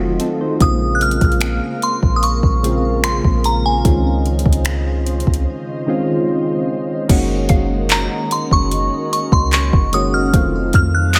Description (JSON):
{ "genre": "contemporary R&B", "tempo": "74 BPM", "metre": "4/4", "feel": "straight", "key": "unclear", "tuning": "A4 = 439 Hz", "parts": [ { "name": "soft electric-piano-like synth keys", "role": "accompaniment", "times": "0.0-11.2 s", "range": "Db3 to C5", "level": "-23 LUFS", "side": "equal", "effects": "chorus, phaser" }, { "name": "glassy FM pad", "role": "sustained chords", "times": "0.0-11.2 s", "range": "Db3 to F5", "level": "-29 LUFS", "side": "equal", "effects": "ensemble chorus, built-in reverb" }, { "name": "soft 808-style bass", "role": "bass", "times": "0.0-11.2 s", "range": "F1 to F2", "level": "-21 LUFS", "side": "equal", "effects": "none" }, { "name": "smooth R&B drum kit", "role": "drums", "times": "0.2-11.2 s", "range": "crash cymbal, finger snaps, handclaps, hi-hat, kick drum", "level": "-19 LUFS", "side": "equal", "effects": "none" }, { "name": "glassy synth bell", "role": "melody", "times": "0.6-11.2 s", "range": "Ab5 to Gb6", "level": "-22 LUFS", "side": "equal", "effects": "chorus, tremolo, delay" }, { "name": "mallet-like synth pluck", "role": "texture", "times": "7.5-9.1 s", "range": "F5", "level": "-33 LUFS", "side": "equal", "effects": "chorus, phaser, delay" } ], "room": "little or no reverb", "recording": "none", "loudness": "-17 LUFS", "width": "mono", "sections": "0.0-7.1 A section; 7.1-11.2 B section", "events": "break 5.5-7.1", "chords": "0.0 F7b9; 0.6 Bbm9; 3.8 Dbmaj9; 7.1 Gb6; 10.3 F7b9" }